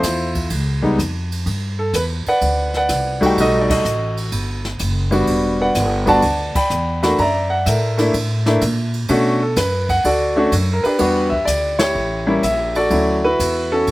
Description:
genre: jazz piano trio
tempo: 126 BPM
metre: 4/4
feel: swing 68% on 8ths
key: unclear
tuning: A4 = 440 Hz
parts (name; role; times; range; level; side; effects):
- warm baby grand piano; melody; 0.0-13.9 s; F#3 to B5; -17 LUFS; equal; none
- upright bass; bass; 0.0-13.9 s; E1 to B2; -22 LUFS; equal; none
- jazz brush drum kit; drums; 0.0-13.9 s; crash cymbal, hi-hat, kick drum, ride cymbal, snare drum; -26 LUFS; right 1 dB; none
room: little or no reverb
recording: recorded outdoors, with no room sound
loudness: -15 LUFS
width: side -18 dB against mid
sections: 0.0-12.9 A section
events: band accent 3.6, 6.5, 11.7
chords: 0.0 Dm9 (rootless); 0.5 C#; 1.5 Cmaj9; 3.4 B7b13; 5.3 Em9; 7.2 F#7alt; 9.1 Bm9; 11.0 Em7; 12.0 A7b9; 12.9 Dmaj9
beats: 0.03 0.51 0.98 | 1.46 1.94 2.41 2.89 | 3.37 3.84 4.32 4.80 | 5.28 5.75 6.23 6.71 | 7.18 7.66 8.14 8.61 | 9.09 9.57 10.05 10.52 | 11.00 11.48 11.96 12.44 | 12.91 13.39 13.87

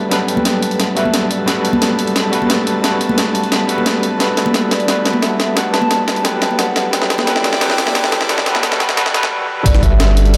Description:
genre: liquid drum and bass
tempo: 176 BPM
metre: 4/4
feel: straight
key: G major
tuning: A4 = 440 Hz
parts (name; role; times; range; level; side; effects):
- hollow clarinet-like synth lead; melody; 0.0-1.6, 4.2-10.4 s; B4 to A5; -25 LUFS; equal; chorus, delay
- overdriven tine electric piano; accompaniment; 0.0-10.4 s; F#3 to B4; -21 LUFS; equal; medium tremolo, digital delay
- airy breathy pad; sustained chords; 0.0-10.4 s; A3 to A5; -26 LUFS; equal; chorus, sidechain pumping
- breakbeat sampler-style drum kit; drums; 0.1-10.4 s; hi-hat, snare drum; -20 LUFS; equal; high-pass filter on snare, high-pass filter on hats, high-pass filter on room
- congas; percussion; 0.4-9.3 s; none; -25 LUFS; equal; none
- saturated sub bass; bass; 9.7-10.4 s; G1; -14 LUFS; equal; none
- electronic kick drum; drums; 9.7-9.9 s; none; -16 LUFS; equal; none
room: light reverb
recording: high-pass filter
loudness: -15 LUFS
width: mono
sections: 0.0-9.7 A section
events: build-up 0.0-9.7; drum fill 0.0-9.3; filter sweep on analog synth pad 0.0-9.7; stop 9.3-9.7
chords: 0.0 Gmaj9; 6.9 Cmaj9; 9.7 Gmaj9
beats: | 0.11 0.45 0.79 1.14 | 1.48 1.82 2.16 2.50 | 2.84 3.18 3.52 3.86 | 4.20 4.54 4.88 5.22 | 5.57 5.91 6.25 6.59 | 6.93 7.27 7.61 7.95 | 8.29 8.63 8.97 9.32 | 9.66 10.00 10.34

